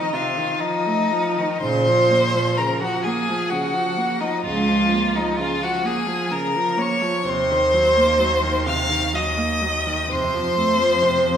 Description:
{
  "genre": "classical, slow romantic movement for string quartet",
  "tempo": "64 BPM",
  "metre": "3/4",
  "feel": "rubato",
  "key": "Bb minor",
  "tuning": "A4 = 442 Hz",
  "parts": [
    { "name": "rich violin", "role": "melody", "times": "0.0-11.4 s", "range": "Eb5 to F6", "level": "-26 LUFS", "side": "left 5 dB", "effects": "none" },
    { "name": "rich violin", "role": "second line", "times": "0.0-11.4 s", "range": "Eb4 to F5", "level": "-20 LUFS", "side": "equal", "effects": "none" },
    { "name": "rich viola", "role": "accompaniment", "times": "0.0-11.4 s", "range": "C3 to Bb3", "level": "-25 LUFS", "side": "right 3 dB", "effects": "none" },
    { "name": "rich cello", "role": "bass", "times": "1.6-11.4 s", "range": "Db2 to Bb2", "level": "-25 LUFS", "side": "right 2 dB", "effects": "none" }
  ],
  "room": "wet recital hall reverb, RT60 1.4 s",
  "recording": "recorded in a church or concert hall",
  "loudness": "-18 LUFS",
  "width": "side -8 dB against mid",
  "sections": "0.0-11.4 A section",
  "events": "none",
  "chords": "0.0 F7/C; 1.6 Bbm; 4.4 Bbm/Db; 7.3 Cm7b5/Eb; 10.1 F"
}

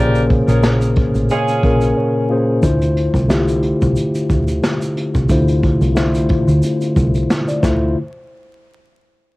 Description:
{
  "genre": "hip hop, boom-bap hip-hop",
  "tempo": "90 BPM",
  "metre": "4/4",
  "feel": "swing 55% on 16ths",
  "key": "unclear",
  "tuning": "A4 = 441 Hz",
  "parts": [
    { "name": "mellow tine electric piano", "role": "accompaniment", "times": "0.0-8.0 s", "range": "Bb2 to Ab5", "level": "-16 LUFS", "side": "left 1 dB", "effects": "slow stereo tremolo, high-pass filter, low-pass filter" },
    { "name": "clear saxophone section", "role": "stabs", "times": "0.0-1.9 s", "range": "Db4 to D5", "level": "-22 LUFS", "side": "right 2 dB", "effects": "high-pass filter, low-pass filter, analog delay" },
    { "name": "deep dub fingered electric bass", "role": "bass", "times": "0.0-7.9 s", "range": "A1 to D2", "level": "-18 LUFS", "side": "equal", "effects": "none" },
    { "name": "vintage brush drum kit", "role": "drums", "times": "0.1-7.8 s", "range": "hi-hat, kick drum, snare drum", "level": "-19 LUFS", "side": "equal", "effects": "cassette tape" },
    { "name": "egg shaker", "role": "percussion", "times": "0.1-7.9 s", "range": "none", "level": "-40 LUFS", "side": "right 3 dB", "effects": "none" }
  ],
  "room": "little or no reverb",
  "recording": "home recording on cassette, vinyl crackle",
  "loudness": "-13 LUFS",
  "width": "side -21 dB against mid",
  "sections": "0.0-2.6 A section; 2.6-8.0 B section; 8.0-9.4 C section",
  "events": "drums muted 2.0-2.6",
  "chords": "0.0 Bbm7; 2.6 Dm7; 8.0 N.C."
}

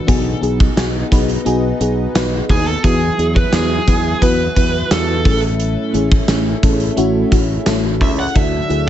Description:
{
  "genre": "1980s-style pop",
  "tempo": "87 BPM",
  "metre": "4/4",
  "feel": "straight",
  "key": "A major",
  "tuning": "A4 = 440 Hz",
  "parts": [
    { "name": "FM electric piano with soft pad layer", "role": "accompaniment", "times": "0.0-8.9 s", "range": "A2 to B4", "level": "-19 LUFS", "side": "left 2 dB", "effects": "chorus, tremolo" },
    { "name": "lush unison pad", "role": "sustained chords", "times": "0.0-8.9 s", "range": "F#3 to E4", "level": "-26 LUFS", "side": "equal", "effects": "chorus" },
    { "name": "fingered electric bass", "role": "bass", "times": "0.1-8.9 s", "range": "A1 to E2", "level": "-20 LUFS", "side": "equal", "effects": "none" },
    { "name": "gated 80s drum kit", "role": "drums", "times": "0.1-8.9 s", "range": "hi-hat, kick drum, snare drum", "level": "-16 LUFS", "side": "equal", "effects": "none" },
    { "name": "high-gain lead guitar", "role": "melody", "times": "2.5-8.9 s", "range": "G#4 to F#5", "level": "-22 LUFS", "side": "right 3 dB", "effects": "distortion, ping-pong delay" }
  ],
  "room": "light reverb, small room ambience",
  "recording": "nothing above 8.0 kHz",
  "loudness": "-13 LUFS",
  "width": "side -11 dB against mid",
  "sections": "0.0-8.9 A section",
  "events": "none",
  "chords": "0.1 B6; 2.8 Eadd9; 5.3 A; 8.4 Dadd9"
}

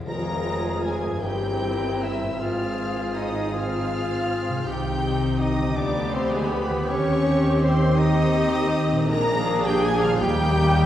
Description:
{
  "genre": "classical, slow romantic movement for symphony orchestra",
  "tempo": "54 BPM (dotted quarters)",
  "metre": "6/8",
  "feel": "rubato",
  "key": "F minor",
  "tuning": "A4 = 440 Hz",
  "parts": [
    { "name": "concert harp", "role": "arpeggios", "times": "0.0-10.9 s", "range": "F2 to F4", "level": "-32 LUFS", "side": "left 3 dB", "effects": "none" },
    { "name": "rich studio violin section", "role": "melody", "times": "0.1-10.9 s", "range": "Ab5 to Bb6", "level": "-36 LUFS", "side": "left 1 dB", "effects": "none" },
    { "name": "mellow hollow silver concert flute", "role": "second line", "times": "0.1-10.9 s", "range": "Ab4 to Bb5", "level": "-32 LUFS", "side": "left 1 dB", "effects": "none" },
    { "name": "rich studio violin section", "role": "second line", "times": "0.1-10.9 s", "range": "Ab4 to Bb5", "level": "-31 LUFS", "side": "left 2 dB", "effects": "none" },
    { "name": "warm clarinet", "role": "second line", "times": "0.1-10.9 s", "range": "Ab3 to Bb4", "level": "-32 LUFS", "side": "left 1 dB", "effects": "none" },
    { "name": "clear studio viola section", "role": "accompaniment", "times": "0.1-10.9 s", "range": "Ab3 to Ab4", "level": "-31 LUFS", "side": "equal", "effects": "none" },
    { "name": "mellow French horn section", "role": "sustained chords", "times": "0.1-10.9 s", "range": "Ab3 to Bb4", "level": "-30 LUFS", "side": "left 2 dB", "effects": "none" },
    { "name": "warm trombone section", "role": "sustained chords", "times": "0.1-10.9 s", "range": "Eb3 to Eb4", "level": "-31 LUFS", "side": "right 2 dB", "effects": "none" },
    { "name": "mellow trumpet", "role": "stabs", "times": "0.1-10.9 s", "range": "G4 to Bb4", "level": "-30 LUFS", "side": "equal", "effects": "none" },
    { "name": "rich studio cello section", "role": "bass", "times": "0.1-10.9 s", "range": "Eb2 to Eb3", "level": "-28 LUFS", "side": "right 1 dB", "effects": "none" },
    { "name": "warm studio double bass section", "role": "bass", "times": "0.1-10.9 s", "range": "F1 to Eb2", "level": "-30 LUFS", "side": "right 1 dB", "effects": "none" },
    { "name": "tam-tam", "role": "percussion", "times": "0.1-3.1 s", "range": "none", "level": "-36 LUFS", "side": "left 1 dB", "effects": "none" }
  ],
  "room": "wet scoring stage reverb, RT60 2.0 s",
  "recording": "heard from further back in the room, vinyl crackle",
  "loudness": "-20 LUFS",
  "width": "side -11 dB against mid",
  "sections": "0.1-10.9 A section",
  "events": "band accent 0.1-0.9",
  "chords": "0.1 Fm; 1.2 C7/G; 2.4 Fm/Ab; 4.7 Cm; 5.8 G7/D; 6.9 Cm/Eb; 9.1 Bb7; 10.2 Eb"
}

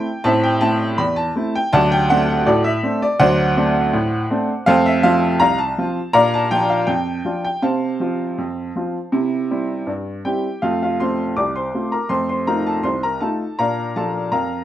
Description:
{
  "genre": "ragtime piano",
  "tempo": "81 BPM",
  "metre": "2/4",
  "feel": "straight",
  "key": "F major from 4.7 s",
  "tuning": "A4 = 440 Hz",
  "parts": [
    { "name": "clear upright piano", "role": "solo", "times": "0.0-14.6 s", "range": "C2 to D6", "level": "-16 LUFS", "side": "equal", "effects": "none" }
  ],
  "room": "moderate studio reverb, RT60 0.8 s",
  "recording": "none",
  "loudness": "-16 LUFS",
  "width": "side -12 dB against mid",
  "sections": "0.0-10.6 A section; 10.6-14.6 B section",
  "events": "none",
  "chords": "0.0 Am; 1.7 D7; 4.7 F; 6.1 Bb; 7.6 F/C; 9.1 C; 10.6 F; 12.1 F7; 13.6 Bb"
}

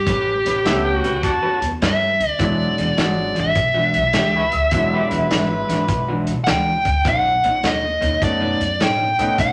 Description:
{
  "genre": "electric blues shuffle",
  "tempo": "103 BPM",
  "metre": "4/4",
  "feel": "swing 66% on 8ths",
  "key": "E mixolydian",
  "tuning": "A4 = 439 Hz",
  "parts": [
    { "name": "dark smooth lead guitar", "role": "melody", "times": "0.0-9.5 s", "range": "G4 to G5", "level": "-22 LUFS", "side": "equal", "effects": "overdrive" },
    { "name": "upright bass", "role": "bass", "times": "0.0-9.5 s", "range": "E1 to A2", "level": "-28 LUFS", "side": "equal", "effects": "none" },
    { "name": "electric guitar through a small old amp", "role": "riff", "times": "0.1-9.5 s", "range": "B2 to B4", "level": "-27 LUFS", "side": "equal", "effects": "none" },
    { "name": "vintage drum kit", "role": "drums", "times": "0.1-9.5 s", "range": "hi-hat, kick drum, snare drum", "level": "-26 LUFS", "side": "equal", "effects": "none" },
    { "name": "overdriven harmonica", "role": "second line", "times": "0.7-6.2 s", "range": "F#4 to A5", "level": "-27 LUFS", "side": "equal", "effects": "none" },
    { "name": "clear upright piano", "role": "accompaniment", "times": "0.7-9.4 s", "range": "F#3 to G4", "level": "-28 LUFS", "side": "equal", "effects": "none" }
  ],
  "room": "moderate large studio reverb, RT60 1.1 s",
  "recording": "none",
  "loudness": "-19 LUFS",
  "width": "mono",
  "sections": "0.0-9.5 A section",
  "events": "none",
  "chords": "0.0 A9; 2.4 E9; 7.1 B9"
}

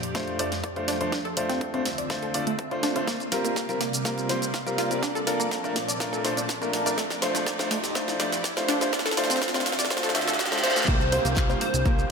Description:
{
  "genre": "progressive house",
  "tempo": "123 BPM",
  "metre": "4/4",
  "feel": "straight",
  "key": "C mixolydian",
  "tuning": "A4 = 439 Hz",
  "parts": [
    { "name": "evolving wavetable pad", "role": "sustained chords", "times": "0.0-12.1 s", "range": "D2 to A5", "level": "-34 LUFS", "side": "right 1 dB", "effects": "ensemble chorus, built-in reverb, phaser, sidechain pumping" },
    { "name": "pop drum kit", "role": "drums", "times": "0.0-12.1 s", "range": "handclaps, hi-hat, shaker, snare drum", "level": "-29 LUFS", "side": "right 1 dB", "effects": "high-pass filter on snare, sidechain pumping on hats, high-pass filter on hats, sidechain pumping on perc, high-pass filter on perc" },
    { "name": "riser, reverse cymbal and downlifter", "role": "sound effects", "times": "0.7-12.1 s", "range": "none", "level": "-34 LUFS", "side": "right 1 dB", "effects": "none" },
    { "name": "wide unison pluck", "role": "arpeggios", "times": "0.1-11.9 s", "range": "A3 to F5", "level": "-31 LUFS", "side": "equal", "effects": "sidechain pumping, dub echo" },
    { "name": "clear grand piano", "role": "stabs", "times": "0.1-12.1 s", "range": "G3 to E5", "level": "-28 LUFS", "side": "left 1 dB", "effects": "sidechain pumping, low-pass filter, dub echo" },
    { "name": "electronic kick drum", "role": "drums", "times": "0.1-12.0 s", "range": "none", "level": "-27 LUFS", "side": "equal", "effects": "high-pass filter on kick" },
    { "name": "plucky unison lead", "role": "melody", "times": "10.9-12.1 s", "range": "C5", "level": "-30 LUFS", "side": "equal", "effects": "sidechain pumping, dub echo" },
    { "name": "fat analog bass", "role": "bass", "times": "10.9-12.0 s", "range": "C2", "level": "-28 LUFS", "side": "equal", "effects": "sidechain pumping" }
  ],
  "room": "wet recital hall reverb, RT60 1.5 s",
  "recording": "high-pass filter",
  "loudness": "-23 LUFS",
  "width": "side -5 dB against mid",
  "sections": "0.0-10.9 A section; 10.9-12.1 B section",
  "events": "build-up 0.0-10.9; drum fill 0.0-10.9; filter sweep on synth pluck 0.0-10.9; riser 0.7-10.9; reverse cymbal 9.9-10.9; drop 10.9-12.1",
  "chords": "0.0 F6; 1.1 Dm7; 3.1 C7sus4; 5.0 Bbmaj7; 7.0 F6; 8.9 Dm7; 10.9 C7sus4"
}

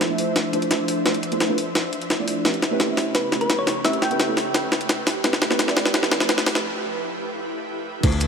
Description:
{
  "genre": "liquid drum and bass",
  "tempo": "172 BPM",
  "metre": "4/4",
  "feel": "straight",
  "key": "unclear",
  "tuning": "A4 = 436 Hz",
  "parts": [
    { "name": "felt-muted upright piano", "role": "accompaniment", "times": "0.0-8.1 s", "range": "A3 to E5", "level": "-26 LUFS", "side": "right 3 dB", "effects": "low-pass filter, digital delay" },
    { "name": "ethereal airy pad", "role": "sustained chords", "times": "0.0-8.3 s", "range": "C#3 to E5", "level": "-28 LUFS", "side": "equal", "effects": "ensemble chorus, built-in reverb, vintage 12-bit sampler grit, sidechain pumping" },
    { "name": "jungle sampler-style drum kit", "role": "drums", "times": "0.0-8.3 s", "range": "crash cymbal, hi-hat, shaker, snare drum", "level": "-22 LUFS", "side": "left 1 dB", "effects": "studio reverb" },
    { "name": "thumb-piano-like synth pluck", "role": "melody", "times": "3.1-4.2 s", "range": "B4 to G5", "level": "-28 LUFS", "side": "left 1 dB", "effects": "chorus, cassette tape, ping-pong delay" },
    { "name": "smooth synth bass", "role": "bass", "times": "8.0-8.3 s", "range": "D2", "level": "-20 LUFS", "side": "left 1 dB", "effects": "none" },
    { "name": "electronic kick drum", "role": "drums", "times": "8.0-8.1 s", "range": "none", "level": "-20 LUFS", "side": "equal", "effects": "overdrive, studio reverb" }
  ],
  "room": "moderate huge ambient reverb, RT60 4.5 s",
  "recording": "high-pass filter",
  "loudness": "-20 LUFS",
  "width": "side -6 dB against mid",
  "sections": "0.0-8.0 A section",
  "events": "build-up 0.0-8.0; drum fill 0.0-6.6; filter sweep on ambient pad 0.0-8.0; break 6.6-8.0",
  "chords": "0.0 Dm9; 2.5 A9/C#; 5.1 Fmaj9#11"
}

